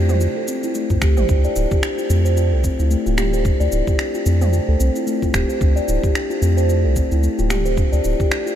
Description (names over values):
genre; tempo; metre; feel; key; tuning
organic downtempo; 111 BPM; 4/4; swing 57% on 16ths; D minor; A4 = 440 Hz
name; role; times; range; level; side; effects
steel tongue drum; arpeggios; 0.0-8.6 s; A3 to D5; -21 LUFS; left 1 dB; low-pass filter, ping-pong delay
round analog bass; bass; 0.0-8.1 s; D1 to G2; -17 LUFS; equal; sidechain pumping
deep house drum kit; drums; 0.1-8.6 s; finger snaps, shaker, toms; -28 LUFS; equal; overdrive, studio reverb
electronic kick drum; drums; 0.9-8.3 s; none; -20 LUFS; equal; studio reverb
room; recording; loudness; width
light reverb; none; -16 LUFS; side -10 dB against mid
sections
0.0-8.6 A section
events
none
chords
0.0 Dm7